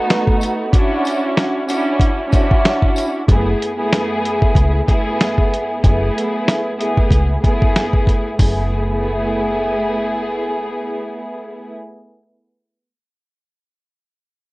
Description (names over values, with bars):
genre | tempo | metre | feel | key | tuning
hip hop, boom-bap hip-hop | 94 BPM | 4/4 | swing 58% on 16ths | F# minor | A4 = 440 Hz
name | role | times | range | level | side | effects
warm studio string section | accompaniment | 0.0-11.7 s | F#2 to G#4 | -18 LUFS | equal | cassette tape, high-pass filter, low-pass filter
dusty soul sampler-style drum kit | drums | 0.1-8.6 s | hi-hat, kick drum, snare drum | -15 LUFS | equal | none
tambourine | percussion | 0.4-3.1 s | none | -35 LUFS | left 4 dB | none
deep dub fingered electric bass | bass | 3.3-12.2 s | F#1 to C#2 | -18 LUFS | equal | none
room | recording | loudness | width
little or no reverb | worn, warbling old tape, cassette tape, warbly pitch drift | -14 LUFS | side -22 dB against mid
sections
0.0-3.3 A section; 3.3-8.4 B section; 8.4-10.9 C section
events
none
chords
0.0 B7; 0.7 Dmaj9; 3.3 F#m11